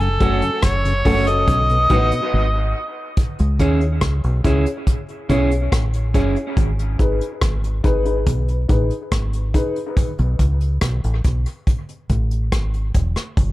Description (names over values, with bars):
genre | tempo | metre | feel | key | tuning
dub reggae | 71 BPM | 4/4 | straight | C# minor | A4 = 441 Hz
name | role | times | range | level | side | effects
overdriven harmonica | melody | 0.0-2.5 s | A4 to D#5 | -20 LUFS | equal | dub echo
mellow tonewheel organ | accompaniment | 0.0-2.2 s | F#2 to D#4 | -28 LUFS | left 2 dB | overdrive, chorus vibrato, slow rotary speaker, dub echo
deep dub fingered electric bass | bass | 0.0-13.5 s | E1 to D#2 | -19 LUFS | equal | none
vintage brush drum kit | drums | 0.0-13.5 s | hi-hat, kick drum, rim click | -20 LUFS | equal | none
electric guitar at the edge of break-up | accompaniment | 0.2-6.3 s | A3 to G#4 | -25 LUFS | right 4 dB | dub echo
dark upright piano | stabs | 0.2-9.8 s | C#4 to C#5 | -25 LUFS | left 3 dB | dub echo
room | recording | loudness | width
light reverb, small room ambience | echo-heavy mix | -16 LUFS | side -17 dB against mid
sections
0.0-3.2 A section; 3.2-13.5 B section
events
break 2.3-3.2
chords
0.0 F#m; 1.5 B; 3.2 C#m; 6.6 G#m; 10.0 Eadd11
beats
0.63 1.48 2.33 | 3.17 4.02 4.87 5.72 | 6.57 7.42 8.27 9.12 | 9.97 10.82 11.67 12.52 | 13.37